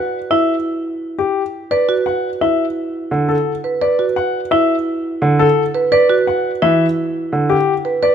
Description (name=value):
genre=classical, minimalist pattern music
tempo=171 BPM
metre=6/4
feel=straight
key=D major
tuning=A4 = 440 Hz
part: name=warm concert grand piano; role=melody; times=0.0-8.1 s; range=G4 to F#5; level=-18 LUFS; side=left 7 dB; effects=none
part: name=marimba with medium hard mallets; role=arpeggios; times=0.3-8.1 s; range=E4 to B4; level=-18 LUFS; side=right 4 dB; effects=none
part: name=clear baby grand piano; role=accompaniment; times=3.1-7.6 s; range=D3 to E3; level=-18 LUFS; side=right 2 dB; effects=none
room=light reverb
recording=close, detailed microphones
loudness=-14 LUFS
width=side -8 dB against mid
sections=0.0-8.1 A section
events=none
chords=0.0 N.C.; 1.7 Dadd9